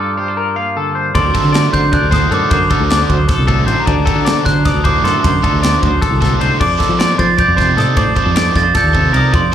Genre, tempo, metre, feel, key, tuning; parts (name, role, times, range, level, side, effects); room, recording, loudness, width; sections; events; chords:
math rock and midwest emo; 308 BPM (eighths); 7/8; straight; A4 = 439 Hz
glockenspiel with soft plastic mallets; melody; 0.0-9.5 s; A5 to A6; -17 LUFS; right 4 dB; slapback echo, plate reverb
clean electric guitar; accompaniment; 0.0-9.5 s; G2 to D5; -21 LUFS; right 5 dB; plate reverb, slapback echo
twangy electric guitar; arpeggios; 0.0-9.5 s; A4 to F5; -19 LUFS; left 7 dB; harmonic tremolo, slapback echo, plate reverb
fingered electric bass; bass; 1.1-9.5 s; A1 to F3; -16 LUFS; equal
modern studio drum kit; drums; 1.1-9.4 s; crash cymbal, kick drum, ride cymbal, snare drum; -18 LUFS; equal
crunchy overdriven guitar; riff; 1.3-9.5 s; A3 to C5; -21 LUFS; equal; slapback echo
light reverb; live gig heard through the venue's PA, club reverb; -11 LUFS; side -10 dB against mid
0.0-1.2 A section; 1.2-9.5 B section
break 0.0-1.2
0.0 Gm9; 1.2 D7b9; 6.6 F13